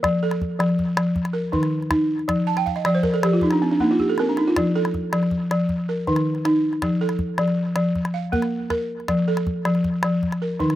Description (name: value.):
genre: west african traditional, West African string and xylophone music.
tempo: 106 BPM (dotted quarters).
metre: 12/8.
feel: straight.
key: F mixolydian.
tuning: A4 = 440 Hz.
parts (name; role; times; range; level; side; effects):
balafon; arpeggios; 0.0-10.8 s; Eb3 to A5; -20 LUFS; equal; none.
calabash; percussion; 0.0-10.8 s; none; -28 LUFS; equal; none.
room: little or no reverb.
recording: recorded outdoors, with no room sound.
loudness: -19 LUFS.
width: side -13 dB against mid.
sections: 0.0-10.8 A section.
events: balafon fill 2.5-4.6; drum fill 3.8-4.6.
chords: 0.0 F; 1.2 Eb5; 2.3 N.C.; 4.6 F; 5.7 Eb5; 6.8 F; 8.0 Bb5; 9.1 F; 10.2 Eb5.